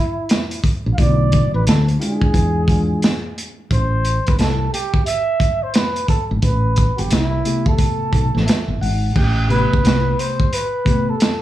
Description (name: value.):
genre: hip hop, jazz-hop.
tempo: 88 BPM.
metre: 4/4.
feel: swing 63% on 16ths.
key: unclear.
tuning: A4 = 441 Hz.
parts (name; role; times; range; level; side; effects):
breathy flugelhorn; melody; 0.0-11.4 s; E4 to F5; -22 LUFS; right 1 dB; none.
crunchy breakbeat drum kit; drums; 0.3-11.4 s; crash cymbal, hi-hat, kick drum, snare drum; -18 LUFS; equal; none.
woody fretless electric bass; bass; 0.9-10.1 s; G1 to E2; -18 LUFS; equal; none.
tine electric piano; accompaniment; 1.0-3.1, 7.4-11.1 s; C3 to F#5; -22 LUFS; left 2 dB; phaser.
room: small room ambience.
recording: studio reverb.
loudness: -15 LUFS.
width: side -14 dB against mid.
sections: 0.0-9.2 A section; 9.2-11.4 B section.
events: tine electric piano fill 8.1-9.2.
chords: 0.0 N.C.; 1.0 Bm7b5; 2.3 E7b9; 3.7 Am9.